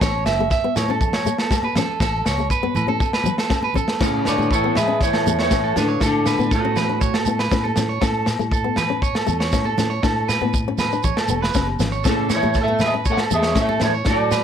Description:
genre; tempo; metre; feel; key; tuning
highlife guitar band; 120 BPM; 4/4; straight; A major; A4 = 442 Hz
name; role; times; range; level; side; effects
nylon-string guitar; accompaniment; 0.0-14.3 s; F#3 to D4; -27 LUFS; left 10 dB; none
electric guitar at the edge of break-up; arpeggios; 0.0-14.4 s; A4 to E5; -24 LUFS; right 7 dB; tape echo
fingered electric bass; bass; 0.0-14.4 s; E1 to A2; -25 LUFS; equal; none
crunchy breakbeat drum kit; drums; 0.0-14.4 s; crash cymbal, kick drum, snare drum; -23 LUFS; equal; none
agogo bells; percussion; 0.0-14.4 s; none; -29 LUFS; left 11 dB; none
shekere; percussion; 0.0-14.4 s; none; -29 LUFS; right 6 dB; none
congas; percussion; 0.4-13.9 s; none; -31 LUFS; right 3 dB; none
electric guitar at the edge of break-up; melody; 4.0-7.3, 12.1-14.4 s; A3 to F#5; -21 LUFS; right 2 dB; warbly pitch drift
breathy trombone; second line; 4.0-7.2, 12.1-14.4 s; A2 to A3; -28 LUFS; left 7 dB; none
room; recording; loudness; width
light reverb; none; -17 LUFS; side -8 dB against mid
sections
0.0-4.0 A section; 4.0-14.4 B section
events
drum fill 3.8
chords
0.0 A; 2.0 N.C.; 4.0 A; 6.0 D/A; 8.0 A; 10.0 D5/A; 12.1 A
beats
| 0.02 0.52 1.02 1.52 | 2.02 2.52 3.02 3.52 | 4.02 4.52 5.02 5.52 | 6.02 6.52 7.02 7.52 | 8.03 8.53 9.03 9.54 | 10.04 10.54 11.05 11.55 | 12.05 12.56 13.06 13.57 | 14.07

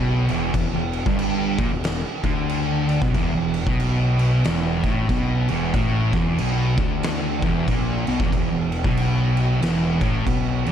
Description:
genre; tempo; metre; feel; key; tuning
stoner and doom metal; 93 BPM; 4/4; swing 61% on 8ths; E minor; A4 = 442 Hz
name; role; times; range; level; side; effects
fuzz guitar; riff; 0.0-10.7 s; E2 to D3; -24 LUFS; right 7 dB; distortion
thick fuzz guitar; riff; 0.0-10.7 s; E2 to D3; -24 LUFS; left 7 dB; distortion
fuzz fingered electric bass; bass; 0.0-10.7 s; E1 to D2; -28 LUFS; equal; overdrive
oversized low-tuned drum kit; drums; 0.3-10.7 s; crash cymbal, kick drum, snare drum; -25 LUFS; equal; none
room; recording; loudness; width
studio reverb; dark, warm production; -19 LUFS; side -9 dB against mid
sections
0.0-10.7 A section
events
none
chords
0.0 Em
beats
| 0.55 1.20 1.85 2.50 | 3.15 3.79 4.44 5.09 | 5.74 6.39 7.04 7.68 | 8.33 8.98 9.62 10.27

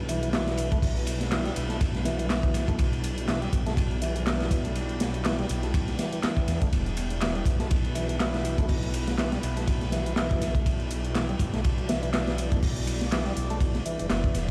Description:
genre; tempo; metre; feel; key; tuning
breakbeat, breaks; 122 BPM; 4/4; swing 56% on 16ths; E minor; A4 = 440 Hz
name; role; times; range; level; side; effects
warbly tape-like pad; sustained chords; 0.0-14.5 s; G3 to D5; -38 LUFS; equal; chorus, built-in reverb, sidechain pumping
detuned saw bass; bass; 0.0-14.5 s; E1 to E2; -32 LUFS; equal; none
percussive tonewheel organ; riff; 0.1-14.5 s; E3 to A3; -36 LUFS; equal; overdrive, chorus vibrato, slow rotary speaker, tube saturation, vintage 12-bit sampler grit, digital delay
crunchy breakbeat drum kit; drums; 0.1-14.5 s; hi-hat, kick drum, ride cymbal, snare drum; -30 LUFS; equal; none
punchy analog drum machine; drums; 0.1-14.5 s; handclaps, hi-hat; -40 LUFS; equal; none
room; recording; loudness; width
light reverb, small room ambience; played on a big sound system in a bare room, stone room reverb, vinyl crackle; -27 LUFS; mono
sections
0.0-14.5 A section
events
none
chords
0.0 Em7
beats
0.33 | 0.82 1.32 1.81 2.30 | 2.79 3.28 3.77 4.27 | 4.76 5.25 5.74 6.24 | 6.73 7.22 7.71 8.20 | 8.69 9.19 9.68 10.17 | 10.66 11.15 11.64 12.14 | 12.63 13.12 13.61 14.10

